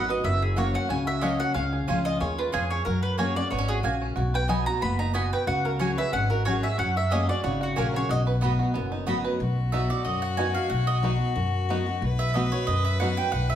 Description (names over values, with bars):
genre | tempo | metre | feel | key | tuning
bluegrass | 184 BPM | 4/4 | swing 54% on 8ths | B major | A4 = 440 Hz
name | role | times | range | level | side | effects
mandolin | melody | 0.0-8.2 s | E#4 to B5 | -29 LUFS | equal | none
picked steel-string acoustic guitar | accompaniment | 0.0-13.6 s | F#2 to G#4 | -29 LUFS | left 2 dB | none
bluegrass banjo | arpeggios | 0.0-13.1 s | F#3 to B4 | -32 LUFS | right 4 dB | none
mandolin | stabs | 0.0-13.6 s | A#3 to B5 | -32 LUFS | right 4 dB | none
upright bass | bass | 0.0-13.6 s | F#1 to F#2 | -28 LUFS | equal | none
clear fiddle | second line | 9.4-13.6 s | F#4 to B4 | -32 LUFS | left 6 dB | none
room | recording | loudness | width
wet large studio reverb, RT60 1.1 s | heard from further back in the room | -23 LUFS | side -10 dB against mid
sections
0.0-9.4 A section; 9.4-13.6 B section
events
mandolin solo 9.4-13.6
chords
0.3 F#; 1.6 C#; 2.9 F#add9; 4.2 B; 5.5 C#sus4; 6.8 F#add9; 8.1 B